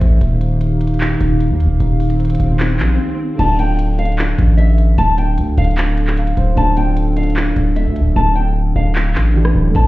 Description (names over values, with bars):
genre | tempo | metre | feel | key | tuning
hip hop, trap | 151 BPM | 4/4 | half-time | D minor | A4 = 440 Hz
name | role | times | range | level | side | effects
dark analog pad | sustained chords | 0.0-9.9 s | D3 to F5 | -22 LUFS | left 1 dB | chorus
distorted 808-style bass | bass | 0.0-9.9 s | D1 to Eb2 | -14 LUFS | equal | distortion
trap drum kit | drums | 0.0-9.8 s | crash cymbal, handclaps, hi-hat, rim click | -24 LUFS | equal | none
swell | sound effects | 2.1-3.4 s | none | -25 LUFS | left 2 dB | none
nylon-string guitar | melody | 3.4-9.9 s | E5 to A5 | -21 LUFS | left 1 dB | none
dark concert grand piano | accompaniment | 3.4-9.9 s | D3 to F5 | -25 LUFS | right 1 dB | none
room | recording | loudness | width
little or no reverb | heard muffled through a wall, stone room reverb, EQ | -13 LUFS | side -18 dB against mid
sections
0.0-3.4 A section; 3.4-9.9 B section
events
swell 2.1-3.4; break 3.0-3.4; grand piano fill 6.0-6.6; hi-hats muted 8.2-9.7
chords
0.2 Ebadd9; 3.4 Dm